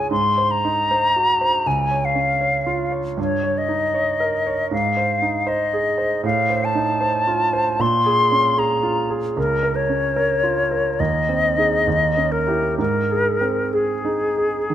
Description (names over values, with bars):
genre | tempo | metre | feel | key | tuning
classical, romantic duo for flute and grand piano | 62-80 BPM | 4/4 | rubato | Ab major | A4 = 441 Hz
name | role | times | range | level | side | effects
silver concert flute | melody | 0.0-14.7 s | Ab4 to C6 | -19 LUFS | left 2 dB | none
clear concert grand piano | accompaniment | 0.0-14.7 s | Db2 to Db5 | -22 LUFS | right 3 dB | none
room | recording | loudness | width
moderate scoring stage reverb, RT60 1.4 s | close, detailed microphones | -17 LUFS | side -11 dB against mid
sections
0.0-14.7 A section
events
none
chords
0.1 Ab7; 1.7 Db; 3.2 Eb7/G; 4.7 Ab; 6.2 F7/A; 7.8 Bbm7; 9.4 Bbm/Db; 11.0 Ab/Eb; 11.9 Eb7b9; 12.8 Ab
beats
| 0.10 0.90 1.66 2.41 | 3.18 3.95 4.72 5.47 | 6.24 7.01 7.80 8.58 | 9.37 10.16 10.99 11.86 | 12.79 13.74 14.70